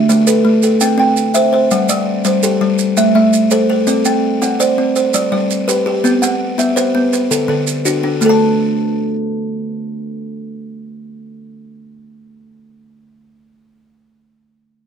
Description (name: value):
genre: southern african traditional, mbira-style interlocking cycle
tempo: 111 BPM (dotted quarters)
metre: 12/8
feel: straight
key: A dorian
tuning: A4 = 440 Hz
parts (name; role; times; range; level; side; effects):
- buzzing kalimba; arpeggios; 0.0-12.9 s; D3 to A5; -15 LUFS; left 3 dB; none
- buzzing kalimba; arpeggios; 0.0-12.9 s; D3 to A5; -17 LUFS; right 4 dB; none
- maracas; percussion; 0.1-8.4 s; none; -21 LUFS; right 8 dB; none
room: light reverb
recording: none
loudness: -12 LUFS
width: side -7 dB against mid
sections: 0.0-8.2 A section; 8.2-12.6 B section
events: none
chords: 0.0 A5; 0.6 C; 1.7 G5; 2.8 Am; 3.9 C5; 5.0 G; 6.0 B5; 7.1 D; 8.2 Asus4